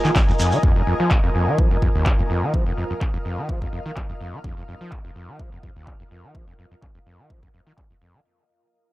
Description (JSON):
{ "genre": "acid house", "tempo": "126 BPM", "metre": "4/4", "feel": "swing 54% on 16ths", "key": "unclear", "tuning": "A4 = 440 Hz", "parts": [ { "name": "overdriven acid bass", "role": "riff", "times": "0.0-8.2 s", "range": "F1 to F3", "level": "-24 LUFS", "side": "equal", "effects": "wide subtle chorus, sidechain pumping, tape echo" }, { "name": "booming analog drum machine", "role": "drums", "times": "0.0-7.9 s", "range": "handclaps, hi-hat", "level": "-28 LUFS", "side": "equal", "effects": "low-pass filter on hats, low-pass filter on cymbals, low-pass filter on snare" }, { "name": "shekere", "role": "percussion", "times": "0.0-0.6 s", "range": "none", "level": "-32 LUFS", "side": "right 2 dB", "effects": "none" }, { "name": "granular cloud pad", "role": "texture", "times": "0.0-8.3 s", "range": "F4 to Ab5", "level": "-28 LUFS", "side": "equal", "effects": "built-in reverb, sidechain pumping" }, { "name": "electronic kick drum", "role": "drums", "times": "0.2-7.9 s", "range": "none", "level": "-21 LUFS", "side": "equal", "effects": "none" } ], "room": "little or no reverb", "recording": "dry, gritty hardware recording, cassette tape", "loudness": "-18 LUFS", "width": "side -17 dB against mid", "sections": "0.0-8.3 A section", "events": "fade-out 0.0-8.3", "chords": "0.0 Fm7" }